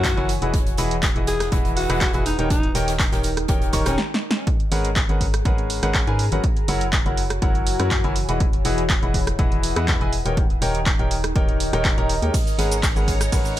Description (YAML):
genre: piano house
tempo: 122 BPM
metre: 4/4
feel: straight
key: G# minor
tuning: A4 = 440 Hz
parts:
  - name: raspy alto saxophone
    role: melody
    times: 0.0-4.0 s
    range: C#4 to G#4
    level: -28 LUFS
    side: left 1 dB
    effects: tape echo
  - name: clear concert grand piano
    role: riff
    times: 0.0-13.6 s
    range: D#3 to C#6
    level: -25 LUFS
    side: left 2 dB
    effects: sidechain pumping, low-pass filter, tape echo
  - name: organ-like FM bass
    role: bass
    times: 0.0-13.6 s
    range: D#1 to G#2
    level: -25 LUFS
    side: equal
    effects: sidechain pumping
  - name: electronic kick drum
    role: drums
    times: 0.0-13.4 s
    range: none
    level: -22 LUFS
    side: equal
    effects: none
  - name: loose indie drum kit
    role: drums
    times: 0.0-4.0, 12.3-13.6 s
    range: hi-hat, snare drum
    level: -34 LUFS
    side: right 2 dB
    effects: high-pass filter on hats, high-pass filter on snare, high-pass filter on room
  - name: punchy analog drum machine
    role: drums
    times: 0.0-13.6 s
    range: handclaps, hi-hat, ride cymbal, rim click, shaker, snare drum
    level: -26 LUFS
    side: right 1 dB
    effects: none
  - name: warbly tape-like pad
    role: texture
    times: 0.0-13.6 s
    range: D#4 to A#5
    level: -32 LUFS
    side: equal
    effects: chorus, built-in reverb, phaser, sidechain pumping
  - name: string machine, violins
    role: sustained chords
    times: 12.3-13.6 s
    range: C#5 to A#5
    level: -32 LUFS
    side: right 1 dB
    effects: ensemble chorus, sidechain pumping
room: small room reverb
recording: none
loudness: -18 LUFS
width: side -13 dB against mid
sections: 0.0-4.5 A section; 4.5-13.6 A section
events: drum fill 4.0-4.5; stop 4.0-4.5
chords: 0.3 Emaj9; 2.3 D#7; 4.5 G#m11; 6.4 F#7; 8.2 Emaj9; 10.1 D#7; 12.3 G#m11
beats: 0.04 | 0.54 1.03 1.52 2.01 | 2.50 3.00 3.49 3.98 | 4.47 4.96 5.46 5.95 | 6.44 6.93 7.42 7.91 | 8.40 8.90 9.39 9.88 | 10.37 10.86 11.36 11.85 | 12.34 12.83 13.32